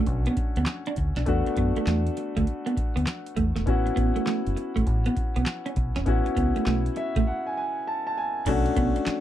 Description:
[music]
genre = R&B, new jack swing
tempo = 100 BPM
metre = 4/4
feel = swing 65% on 16ths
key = unclear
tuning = A4 = 440 Hz
[part]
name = warm concert grand piano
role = accompaniment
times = 0.0-9.2 s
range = A3 to A5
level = -28 LUFS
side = left 3 dB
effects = plate reverb
[part]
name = clean electric guitar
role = riff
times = 0.0-9.1 s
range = A3 to D4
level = -28 LUFS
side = right 4 dB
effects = ensemble chorus
[part]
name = deep dub fingered electric bass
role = bass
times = 0.0-9.1 s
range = E1 to F#2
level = -27 LUFS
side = equal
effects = none
[part]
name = booming analog drum machine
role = drums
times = 0.1-9.2 s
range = crash cymbal, handclaps, hi-hat, kick drum, snare drum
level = -28 LUFS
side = equal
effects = none
[sound]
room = light reverb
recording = dark, warm production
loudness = -23 LUFS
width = side -12 dB against mid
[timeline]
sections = 0.0-8.5 A section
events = grand piano fill 6.7-8.5; break 7.3-8.5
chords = 0.0 Bm7; 1.3 E9sus4; 3.7 A6; 8.5 Bm7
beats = 0.07 0.67 | 1.27 1.87 2.47 3.07 | 3.67 4.27 4.87 5.47 | 6.07 6.67 7.27 7.87 | 8.47 9.07

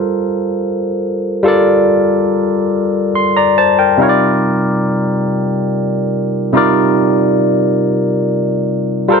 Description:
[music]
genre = R&B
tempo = 47 BPM (dotted quarters)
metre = 6/8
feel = straight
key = unclear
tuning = A4 = 440 Hz
[part]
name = barky tine electric piano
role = solo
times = 0.0-9.2 s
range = C3 to C6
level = -12 LUFS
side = equal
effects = overdrive, phaser
[sound]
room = moderate studio ambience, RT60 0.5 s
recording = none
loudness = -12 LUFS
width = side -5 dB against mid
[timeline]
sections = 0.0-9.2 A section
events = none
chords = 0.0 Gm11; 4.0 Cm11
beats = 0.15 | 1.43 2.71 | 3.98 5.26 | 6.54 7.82 | 9.09

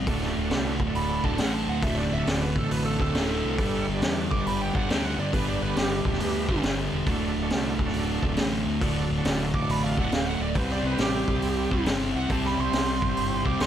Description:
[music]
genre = blues rock power trio and southern rock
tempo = 138 BPM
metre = 4/4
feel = swing 66% on 8ths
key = D mixolydian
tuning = A4 = 440 Hz
[part]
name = fuzz guitar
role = riff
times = 0.0-13.7 s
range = D2 to C4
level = -27 LUFS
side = equal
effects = distortion
[part]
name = fuzz fingered electric bass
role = bass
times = 0.0-13.7 s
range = D1 to G2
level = -31 LUFS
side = equal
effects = overdrive
[part]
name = overdriven tonewheel organ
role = sustained chords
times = 0.1-13.6 s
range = C4 to E5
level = -36 LUFS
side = right 5 dB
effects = chorus vibrato
[part]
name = raw garage drum kit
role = drums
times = 0.1-13.7 s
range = hi-hat, kick drum, snare drum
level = -29 LUFS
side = equal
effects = none
[part]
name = smooth overdriven lead guitar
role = second line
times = 1.0-6.6, 9.5-13.7 s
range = G4 to D6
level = -31 LUFS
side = right 4 dB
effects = none
[sound]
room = light reverb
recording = none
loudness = -23 LUFS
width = side -10 dB against mid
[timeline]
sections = 0.0-13.7 A section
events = lead electric guitar solo 0.0-13.7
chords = 0.1 D; 3.6 G; 7.1 D; 10.6 C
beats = | 0.07 0.51 0.95 1.39 | 1.83 2.27 2.70 3.14 | 3.58 4.02 4.46 4.89 | 5.33 5.77 6.20 6.64 | 7.08 7.51 7.95 8.38 | 8.82 9.26 9.69 10.13 | 10.56 11.00 11.43 11.87 | 12.30 12.74 13.18 13.61

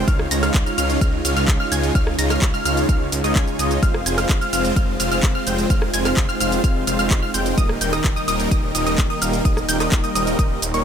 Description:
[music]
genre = EDM, festival progressive house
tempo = 128 BPM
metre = 4/4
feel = straight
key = F minor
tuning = A4 = 439 Hz
[part]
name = lush unison pad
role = sustained chords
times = 0.0-10.8 s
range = Db3 to C5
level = -28 LUFS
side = right 1 dB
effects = chorus, sidechain pumping
[part]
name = wide unison pluck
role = arpeggios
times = 0.0-10.8 s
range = Db6 to Bb6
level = -26 LUFS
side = right 1 dB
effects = sidechain pumping, dub echo
[part]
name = supersaw chords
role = riff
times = 0.0-10.8 s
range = G3 to Bb5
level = -23 LUFS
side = equal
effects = sidechain pumping, dub echo
[part]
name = wide detuned saw bass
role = bass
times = 0.0-10.8 s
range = Eb1 to Db2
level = -25 LUFS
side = equal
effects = chorus, sidechain pumping
[part]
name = electronic kick drum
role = drums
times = 0.1-10.5 s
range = none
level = -19 LUFS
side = equal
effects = studio reverb
[part]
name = house drum kit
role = drums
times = 0.1-10.8 s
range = handclaps, hi-hat, rim click, shaker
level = -25 LUFS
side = right 1 dB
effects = studio reverb
[sound]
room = little or no reverb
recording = none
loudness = -17 LUFS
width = side -8 dB against mid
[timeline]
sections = 0.0-10.8 A section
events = none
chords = 0.1 Dbadd9; 3.8 Fm; 7.6 Eb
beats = | 0.08 0.55 1.01 1.48 | 1.95 2.42 2.89 3.36 | 3.83 4.29 4.76 5.23 | 5.70 6.17 6.64 7.11 | 7.58 8.04 8.51 8.98 | 9.45 9.92 10.39

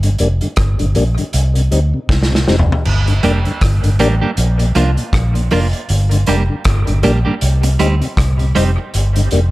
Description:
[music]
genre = dub reggae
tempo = 79 BPM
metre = 4/4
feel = swing 58% on 16ths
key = G minor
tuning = A4 = 440 Hz
[part]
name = mellow tonewheel organ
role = accompaniment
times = 0.0-9.4 s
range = G2 to Eb4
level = -21 LUFS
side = left 3 dB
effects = overdrive, chorus vibrato, slow rotary speaker, dub echo
[part]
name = vintage muted fingered electric bass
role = bass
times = 0.0-9.5 s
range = F1 to D2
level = -14 LUFS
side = equal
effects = none
[part]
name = vintage drum kit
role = drums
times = 0.0-9.5 s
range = crash cymbal, hi-hat, kick drum, rim click, snare drum, toms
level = -19 LUFS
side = equal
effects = none
[part]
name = clean electric guitar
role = accompaniment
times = 3.2-8.8 s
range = F3 to G4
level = -20 LUFS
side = right 4 dB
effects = dub echo
[sound]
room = small room ambience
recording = none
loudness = -12 LUFS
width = side -18 dB against mid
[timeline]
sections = 0.0-2.9 A section; 2.9-9.5 A section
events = break 0.0-2.9; drum fill 2.1-2.9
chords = 0.0 Gm; 1.3 Cm; 2.9 Gm; 4.4 Bb; 5.9 Gm; 7.4 Cm; 8.9 Gm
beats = 0.57 1.33 2.09 | 2.85 3.61 4.37 5.13 | 5.89 6.65 7.41 8.17 | 8.93

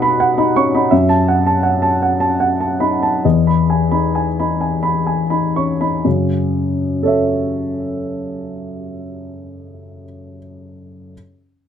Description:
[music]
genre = neoclassical minimalist piano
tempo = 60-84 BPM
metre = 3/4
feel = rubato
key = F# dorian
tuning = A4 = 440 Hz
[part]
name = dark baby grand piano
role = solo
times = 0.0-11.1 s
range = E2 to C#6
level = -15 LUFS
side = left 1 dB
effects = none
[sound]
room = light reverb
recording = none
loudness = -14 LUFS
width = side -8 dB against mid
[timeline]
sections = 0.0-6.0 A section; 6.0-8.9 B section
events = slowing down 0.0-6.0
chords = 0.0 B; 0.9 F#m7; 3.2 Emaj7; 6.0 F#m7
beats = 0.20 | 0.91 1.64 2.41 | 3.24 4.14 5.07 | 6.05 7.01 7.95

